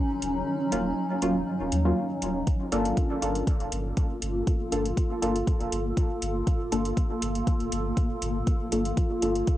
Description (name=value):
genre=dub techno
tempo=120 BPM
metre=4/4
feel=straight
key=G minor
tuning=A4 = 439 Hz
part: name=granular cloud pad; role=sustained chords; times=0.0-9.6 s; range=Gb3 to A4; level=-29 LUFS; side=equal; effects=built-in reverb, sidechain pumping, cassette tape
part: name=warm sub bass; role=bass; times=0.2-9.4 s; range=Eb1 to Eb2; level=-31 LUFS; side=equal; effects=sidechain pumping
part: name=electronic hi-hat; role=drums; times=0.2-9.6 s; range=none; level=-37 LUFS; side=left 1 dB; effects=cassette tape
part: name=deep mellow chord stab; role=stabs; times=0.7-9.4 s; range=Gb3 to A4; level=-30 LUFS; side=equal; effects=chorus, phaser, sidechain pumping, cassette tape, dub echo
part: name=electronic kick drum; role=drums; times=2.5-9.6 s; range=none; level=-25 LUFS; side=equal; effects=cassette tape
room=moderate studio reverb, RT60 0.6 s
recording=home recording on cassette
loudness=-24 LUFS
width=side -14 dB against mid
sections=0.0-9.6 A section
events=filter sweep on synth stab 0.0-9.6; kick drops out 0.5-2.5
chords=0.0 Ebm9; 2.5 Gm9